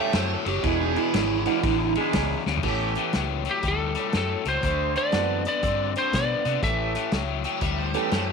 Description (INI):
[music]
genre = electric blues shuffle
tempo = 120 BPM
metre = 4/4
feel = swing 64% on 8ths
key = A mixolydian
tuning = A4 = 442 Hz
[part]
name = overdriven slide guitar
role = second line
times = 0.0-1.9, 7.5-8.3 s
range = D#4 to G5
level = -27 LUFS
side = right 14 dB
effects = none
[part]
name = overdriven semi-hollow guitar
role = riff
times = 0.0-8.3 s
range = E2 to C4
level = -28 LUFS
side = left 15 dB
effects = none
[part]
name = warm horn section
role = stabs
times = 0.0-8.3 s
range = G#3 to C5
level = -31 LUFS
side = right 12 dB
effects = none
[part]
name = vintage muted fingered electric bass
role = bass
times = 0.1-8.3 s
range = E1 to C3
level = -29 LUFS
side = equal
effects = none
[part]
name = vintage drum kit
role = drums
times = 0.1-8.3 s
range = crash cymbal, hi-hat, kick drum, ride cymbal, snare drum, toms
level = -29 LUFS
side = left 1 dB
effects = none
[part]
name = clear upright piano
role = accompaniment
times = 1.5-8.1 s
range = E3 to G4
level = -32 LUFS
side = right 14 dB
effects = none
[part]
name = lightly driven lead guitar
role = melody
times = 3.5-7.4 s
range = G4 to E5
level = -26 LUFS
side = equal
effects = none
[sound]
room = light reverb, small room ambience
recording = 1960s-style stereo with parts hard left and right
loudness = -22 LUFS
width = side -5 dB against mid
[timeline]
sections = 0.0-2.6 A section; 2.6-8.3 B section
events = electric slide guitar solo 0.0-2.6; drum fill 2.4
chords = 0.0 A7; 0.6 E7; 2.6 A7; 4.6 D7; 6.6 A7